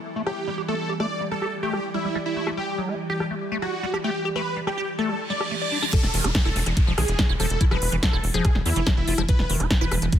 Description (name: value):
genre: psychedelic trance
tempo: 143 BPM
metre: 4/4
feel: straight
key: unclear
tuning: A4 = 440 Hz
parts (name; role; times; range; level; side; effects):
- evolving wavetable pad; sustained chords; 0.0-10.2 s; E3; -35 LUFS; right 2 dB; ensemble chorus, built-in reverb, phaser, sidechain pumping
- ethereal airy pad; texture; 0.0-5.9 s; G3 to D6; -35 LUFS; right 2 dB; ensemble chorus, built-in reverb, sidechain pumping
- techno drum kit; drums; 0.1-10.2 s; crash cymbal, hi-hat, rim click, snare drum; -28 LUFS; equal; low-pass filter on snare, low-pass filter on hats, low-pass filter on cymbals
- liquid acid bass; riff; 0.2-10.1 s; D#3 to G4; -30 LUFS; moving between left 4 dB and right 4 dB; phaser, auto-pan, sidechain pumping, tape echo
- dense compressed supersaw; melody; 0.3-9.9 s; E4 to D5; -29 LUFS; equal; phaser, cassette tape, sidechain pumping, tape echo
- reverse cymbal and downlifter; sound effects; 5.2-9.3 s; none; -31 LUFS; right 2 dB; none
- electronic kick drum; drums; 5.9-10.2 s; none; -20 LUFS; equal; none
- tight sequencer bass; bass; 6.0-10.1 s; E1 to E2; -24 LUFS; equal; none
room: light reverb, digital ambience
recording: none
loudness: -21 LUFS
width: side -10 dB against mid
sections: 0.0-5.9 A section; 5.9-10.2 B section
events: filter sweep on acid bass 0.0-5.9; reverse cymbal 5.2-5.9; drop 5.9-10.2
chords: 0.0 G5; 5.9 E5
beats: 0.06 0.47 | 0.89 1.31 1.73 2.15 | 2.57 2.99 3.41 3.83 | 4.25 4.67 5.09 5.51 | 5.93 6.35 6.77 7.19 | 7.61 8.03 8.45 8.87 | 9.29 9.71 10.12